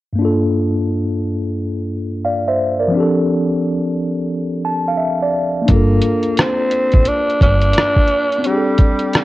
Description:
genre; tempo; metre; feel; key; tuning
lo-fi hip hop; 87 BPM; 4/4; swing 64% on 16ths; G minor; A4 = 436 Hz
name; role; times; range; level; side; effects
mellow tine electric piano; accompaniment; 0.1-9.2 s; G2 to A5; -17 LUFS; left 1 dB; medium stereo tremolo, low-pass filter
growling tenor saxophone; melody; 5.7-9.2 s; G3 to D4; -17 LUFS; equal; low-pass filter, tape echo
upright bass; bass; 5.7-7.7 s; G1 to Bb1; -17 LUFS; equal; tube saturation
lo-fi sampler-style drum kit; drums; 5.7-9.2 s; hi-hat, kick drum, rim click; -14 LUFS; equal; none
room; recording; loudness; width
light reverb, studio reverb; worn, warbling old tape, cassette tape, warbly pitch drift; -14 LUFS; side -17 dB against mid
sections
0.2-5.7 A section; 5.7-9.2 B section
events
tine electric piano fill 4.3-5.7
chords
0.2 Gm9; 2.9 F69; 5.7 Gm9; 8.4 Gsus4

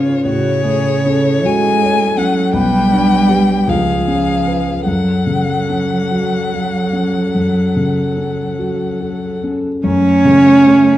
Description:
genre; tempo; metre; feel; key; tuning
classical, slow romantic movement for piano quartet; 46-57 BPM (dotted quarters); 12/8; rubato; F# minor; A4 = 440 Hz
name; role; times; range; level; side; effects
warm violin; melody; 0.0-11.0 s; C#5 to G#5; -20 LUFS; left 5 dB; none
warm cello; second line; 0.0-11.0 s; C#3 to A3; -18 LUFS; right 4 dB; none
dark baby grand piano; accompaniment; 0.0-11.0 s; B1 to C#5; -17 LUFS; left 1 dB; none
dark viola; accompaniment; 0.0-11.0 s; C#4 to B4; -17 LUFS; right 1 dB; none
room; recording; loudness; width
wet recital hall reverb, RT60 1.4 s; dark, warm production; -12 LUFS; side -13 dB against mid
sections
0.0-9.8 A section; 9.8-11.0 B section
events
none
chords
0.3 F#m/A; 2.5 G/B; 3.7 C#7; 4.9 F#m

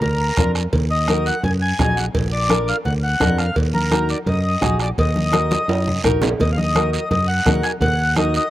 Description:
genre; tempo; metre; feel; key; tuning
latin, cumbia; 169 BPM; 4/4; straight; Eb harmonic minor; A4 = 441 Hz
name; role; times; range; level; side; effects
mellow accordion; melody; 0.0-8.5 s; Bb4 to Ab5; -22 LUFS; left 1 dB; slapback echo
fingered electric bass; bass; 0.0-8.4 s; Bb1 to Gb2; -21 LUFS; equal; none
congas; percussion; 0.0-8.3 s; none; -25 LUFS; equal; none
cowbell and timbales; percussion; 0.0-8.0 s; none; -27 LUFS; right 2 dB; slapback echo
guiro; percussion; 0.0-8.5 s; none; -31 LUFS; right 4 dB; none
flamenco guitar; accompaniment; 0.4-8.4 s; D4 to Bb4; -23 LUFS; left 1 dB; slapback echo
bombo; percussion; 0.4-8.3 s; none; -23 LUFS; right 1 dB; none
room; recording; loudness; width
little or no reverb; recorded outdoors, with no room sound; -16 LUFS; side -14 dB against mid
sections
0.0-6.4 A section; 6.4-8.5 B section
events
drum fill 5.3-6.4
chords
0.0 Bb; 0.7 Ebm; 2.1 Bb; 3.6 Ebm

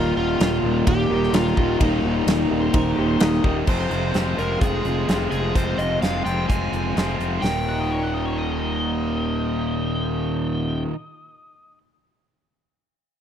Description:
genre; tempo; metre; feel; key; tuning
classic rock; 128 BPM; 4/4; straight; Eb major; A4 = 440 Hz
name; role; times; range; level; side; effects
overdriven slide guitar; melody; 0.0-10.8 s; Eb4 to Ab5; -26 LUFS; left 1 dB; slapback echo
warm upright piano; accompaniment; 0.0-3.6 s; Bb3 to C5; -31 LUFS; right 5 dB; none
tonewheel organ; sustained chords; 0.0-3.6 s; G3 to G4; -35 LUFS; left 1 dB; none
crunchy overdriven guitar; riff; 0.0-11.0 s; Eb2 to F4; -27 LUFS; left 12 dB; none
distorted electric guitar; riff; 0.0-11.0 s; Eb2 to F4; -27 LUFS; right 12 dB; overdrive
fuzz fingered electric bass; bass; 0.0-10.8 s; Eb1 to F1; -26 LUFS; equal; overdrive
huge arena drum kit; drums; 0.4-7.5 s; crash cymbal, hi-hat, kick drum, ride cymbal, snare drum; -24 LUFS; equal; none
octave-fuzz lead guitar; second line; 2.6-3.6, 7.7-11.8 s; G4 to Gb5; -35 LUFS; left 3 dB; distortion
room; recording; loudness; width
small room reverb; dry, close 1970s-style studio recording; -19 LUFS; side -9 dB against mid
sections
0.0-3.7 A section; 3.7-7.4 B section; 7.4-11.2 C section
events
none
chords
0.0 Eb; 3.7 Fm; 7.4 Eb

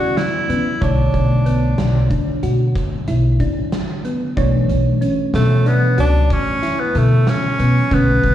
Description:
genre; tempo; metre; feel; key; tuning
progressive instrumental, band music in an uneven meter; 186 BPM (eighths); 11/8; straight; unclear; A4 = 440 Hz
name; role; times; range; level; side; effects
edgy tenor saxophone; melody; 0.0-8.3 s; A3 to F#4; -20 LUFS; equal; slapback echo
tine electric piano; accompaniment; 0.0-8.3 s; D3 to C#5; -23 LUFS; right 1 dB; medium stereo tremolo, slapback echo
thumb-piano-like synth pluck; arpeggios; 0.0-8.3 s; D3 to D5; -24 LUFS; left 2 dB; chorus, slapback echo, tape echo
upright bass; bass; 0.0-8.3 s; A1 to C#3; -16 LUFS; equal; none
oversized low-tuned drum kit; drums; 0.2-8.3 s; hi-hat, kick drum, snare drum; -24 LUFS; equal; none
room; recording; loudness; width
small room ambience; live gig heard through the venue's PA, club reverb; -14 LUFS; side -12 dB against mid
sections
0.0-8.3 A section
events
none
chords
0.0 E7sus4; 0.8 Bm7; 4.4 Dmaj7/B

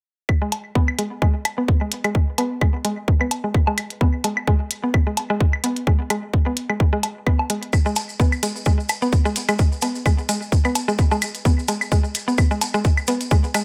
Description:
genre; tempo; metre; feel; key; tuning
minimal techno; 129 BPM; 4/4; swing 55% on 16ths; G# minor; A4 = 440 Hz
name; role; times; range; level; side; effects
electronic kick drum; drums; 0.3-13.4 s; none; -20 LUFS; equal; none
woodblock; percussion; 0.3-13.6 s; none; -28 LUFS; equal; digital delay
mallet-like synth pluck; riff; 0.4-13.6 s; G#3 to B3; -27 LUFS; equal; chorus, sidechain pumping, digital delay
electronic hi-hat; drums; 0.5-13.6 s; none; -28 LUFS; equal; overdrive
maracas; percussion; 7.7-13.6 s; none; -33 LUFS; equal; none
room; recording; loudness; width
light reverb; none; -21 LUFS; mono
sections
0.3-13.6 A section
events
filter sweep on synth arpeggio sound 0.3-13.6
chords
none

